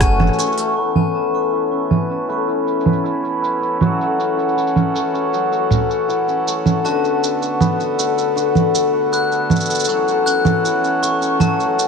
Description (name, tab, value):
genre	folktronica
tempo	79 BPM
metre	4/4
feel	straight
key	F# minor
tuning	A4 = 440 Hz
part	glockenspiel with brass mallets	second line	0.0-0.8, 6.8-11.8 s	G#5 to F#6	-25 LUFS	left 1 dB	digital delay
part	pedal harmonium	sustained chords	0.0-11.9 s	D3 to A4	-25 LUFS	right 1 dB	vintage 12-bit sampler grit, low-pass filter
part	hammered dulcimer	arpeggios	0.0-11.9 s	D3 to B4	-18 LUFS	left 2 dB	low-pass filter, ping-pong delay
part	organic electronic drum kit	drums	0.0-11.9 s	congas, hi-hat, rim click, shaker	-18 LUFS	right 3 dB	low-pass filter on hats, low-pass filter on perc, low-pass filter on snare, low-pass filter on room
room	moderate echo chamber reverb, RT60 1.7 s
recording	none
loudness	-15 LUFS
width	side -5 dB against mid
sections	0.8-11.9 A section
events	filter sweep on drum 0.8-11.9; filter sweep on hammered dulcimer 0.8-11.9; filter sweep on harmonium 0.8-11.9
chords	0.0 F#m7; 0.8 Aadd9; 6.8 D6; 9.9 F#m7